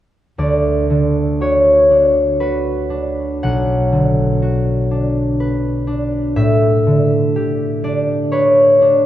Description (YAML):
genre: classical, solo harp piece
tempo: 56-63 BPM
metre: 3/4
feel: rubato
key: D major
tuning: A4 = 440 Hz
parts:
  - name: concert harp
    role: solo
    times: 0.4-9.1 s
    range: B1 to F#5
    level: -13 LUFS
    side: equal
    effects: none
room: wet cathedral reverb, RT60 5.5 s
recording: dark, warm production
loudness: -13 LUFS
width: side -12 dB against mid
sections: 0.4-9.1 A section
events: none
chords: 0.4 D6; 3.4 Bm; 6.4 A11